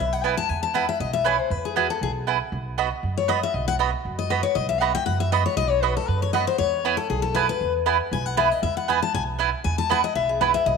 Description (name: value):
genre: bluegrass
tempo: 236 BPM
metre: 4/4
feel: swing 54% on 8ths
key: E major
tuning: A4 = 444 Hz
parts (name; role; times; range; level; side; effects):
- picked steel-string acoustic guitar; accompaniment; 0.0-10.8 s; F#4 to A5; -24 LUFS; left 8 dB; none
- upright bass; bass; 0.0-10.8 s; B1 to F#2; -28 LUFS; right 2 dB; none
- mandolin; stabs; 0.2-10.5 s; B3 to B5; -25 LUFS; right 12 dB; none
room: moderate echo chamber reverb, RT60 1.9 s, small room ambience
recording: 1960s-style stereo with parts hard left and right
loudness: -21 LUFS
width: side -5 dB against mid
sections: 0.0-10.8 A section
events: steel-string acoustic guitar solo 0.0-10.8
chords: 0.0 E; 2.5 B; 6.6 E